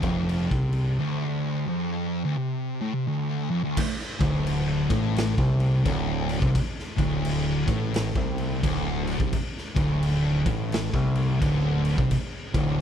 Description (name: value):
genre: stoner and doom metal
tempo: 86 BPM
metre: 4/4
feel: swing 62% on 8ths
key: D minor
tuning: A4 = 438 Hz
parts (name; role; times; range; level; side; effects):
- thick fuzz guitar; riff; 0.0-12.8 s; D2 to C3; -27 LUFS; left 7 dB; distortion
- thick fuzz guitar; riff; 0.0-12.8 s; D2 to C3; -27 LUFS; right 7 dB; distortion
- growling fingered electric bass; bass; 0.0-12.8 s; D1 to C2; -31 LUFS; equal; overdrive, tube saturation
- raw garage drum kit; drums; 0.0-12.7 s; crash cymbal, kick drum, snare drum; -29 LUFS; equal; none
room: small room ambience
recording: none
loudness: -23 LUFS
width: side -9 dB against mid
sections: 0.0-3.8 A section; 3.8-12.8 B section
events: break 1.0-3.8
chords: 0.0 Dm; 3.8 D5